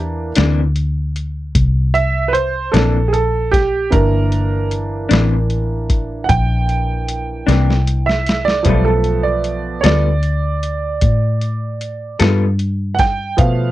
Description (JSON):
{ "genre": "slow blues", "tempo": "51 BPM (dotted quarters)", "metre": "12/8", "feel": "straight", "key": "C mixolydian", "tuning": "A4 = 440 Hz", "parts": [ { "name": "bright upright piano", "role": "accompaniment", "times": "0.0-13.7 s", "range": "E3 to G5", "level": "-19 LUFS", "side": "right 4 dB", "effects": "none" }, { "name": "vintage muted fingered electric bass", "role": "bass", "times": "0.0-13.7 s", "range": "G1 to B2", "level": "-17 LUFS", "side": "left 1 dB", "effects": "none" }, { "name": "electric guitar through a small old amp", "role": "accompaniment", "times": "0.4-12.4 s", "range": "C3 to A4", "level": "-18 LUFS", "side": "left 4 dB", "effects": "tremolo" }, { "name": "lo-fi sampler-style drum kit", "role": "drums", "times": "0.4-13.6 s", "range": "hi-hat, kick drum, snare drum", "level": "-18 LUFS", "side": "left 1 dB", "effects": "none" } ], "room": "little or no reverb", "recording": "dry, close 1970s-style studio recording", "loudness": "-14 LUFS", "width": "side -15 dB against mid", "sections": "0.0-13.7 A section", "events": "upright piano solo 0.0-13.7; drum fill 7.5-8.7", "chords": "0.0 C9; 8.7 G9", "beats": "0.36 1.54 2.73 | 3.92 5.10 6.29 7.47 | 8.66 9.84 11.03 12.21 | 13.39" }